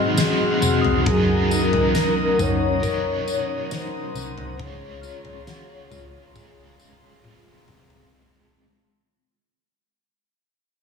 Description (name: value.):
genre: dream pop.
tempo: 68 BPM.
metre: 4/4.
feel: straight.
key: Db major.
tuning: A4 = 440 Hz.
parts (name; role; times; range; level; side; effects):
warm velvety synth lead; melody; 0.0-7.3 s; Ab4 to Eb5; -26 LUFS; left 1 dB; chorus, slapback echo, tape echo.
crunchy overdriven guitar; accompaniment; 0.0-8.6 s; Ab2 to Bb4; -27 LUFS; right 2 dB; tremolo, ensemble chorus, slapback echo.
mellow tonewheel organ; sustained chords; 0.0-8.1 s; Ab4 to F6; -28 LUFS; left 1 dB; slow rotary speaker.
mellow electric guitar; arpeggios; 0.0-8.7 s; Ab2 to Bb4; -26 LUFS; left 2 dB; ensemble chorus, slapback echo, tape echo.
vintage muted picked electric bass; bass; 0.0-8.1 s; F1 to Db2; -28 LUFS; left 1 dB; none.
loose indie drum kit; drums; 0.2-8.1 s; kick drum, snare drum, tambourine, toms; -25 LUFS; left 2 dB; none.
small celesta; texture; 0.8-5.9 s; Eb6 to F6; -34 LUFS; left 7 dB; none.
room: wet scoring stage reverb, RT60 2.0 s, small room ambience.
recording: big arena sound.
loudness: -18 LUFS.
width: side -6 dB against mid.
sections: 0.0-8.1 A section.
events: fade-out 0.0-8.1; drum fill 7.2-8.1.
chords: 0.0 Ab7; 1.1 Ebm7/Gb; 4.6 Dbmaj7.